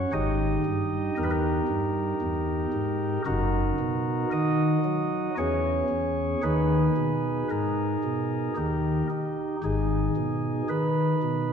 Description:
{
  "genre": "classical, chorale-style piece for pipe organ",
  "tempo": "57 BPM",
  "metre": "3/4",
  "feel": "straight",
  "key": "unclear",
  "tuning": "A4 = 439 Hz",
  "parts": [
    { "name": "chamber organ, flutes", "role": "solo", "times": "0.0-11.5 s", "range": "F#1 to D#5", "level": "-24 LUFS", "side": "equal", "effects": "none" }
  ],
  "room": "wet scoring stage reverb, RT60 1.9 s",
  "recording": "dark, warm production",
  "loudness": "-24 LUFS",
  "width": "side -7 dB against mid",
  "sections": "0.0-11.5 A section",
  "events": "none",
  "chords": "0.1 D#/G#; 3.3 D#m/F#; 5.4 C#m/E; 6.5 D#sus4; 8.6 D#; 9.7 G#m",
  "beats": "| 0.15 1.19 2.23 | 3.27 4.34 5.39 | 6.45 7.52 8.59 | 9.65 10.71"
}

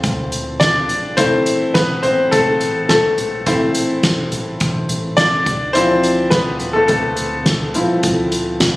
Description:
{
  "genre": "piano-driven pop",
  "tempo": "105 BPM",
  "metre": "4/4",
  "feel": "straight",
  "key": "unclear",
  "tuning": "A4 = 441 Hz",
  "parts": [
    { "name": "bright upright piano", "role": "accompaniment", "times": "0.0-8.8 s", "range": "F3 to D5", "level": "-16 LUFS", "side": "left 1 dB", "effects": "none" },
    { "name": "mellow tine electric piano", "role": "bass", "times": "0.0-8.8 s", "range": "A1 to D2", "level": "-28 LUFS", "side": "equal", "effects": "none" },
    { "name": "soft-mallet drum kit", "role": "drums", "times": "0.0-8.7 s", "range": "hi-hat, kick drum, snare drum, toms", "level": "-19 LUFS", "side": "equal", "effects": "none" }
  ],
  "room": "light reverb, studio reverb",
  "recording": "recorded on a phone in the room, compression",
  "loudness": "-14 LUFS",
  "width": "side -18 dB against mid",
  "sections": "0.0-8.8 A section",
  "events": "upright piano solo 0.0-8.8",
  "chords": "0.0 Dm7; 1.2 Am; 5.5 Dm7",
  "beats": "0.03 0.61 | 1.18 1.75 2.32 2.89 | 3.47 4.04 4.61 5.18 | 5.75 6.33 6.90 7.47 | 8.04 8.61"
}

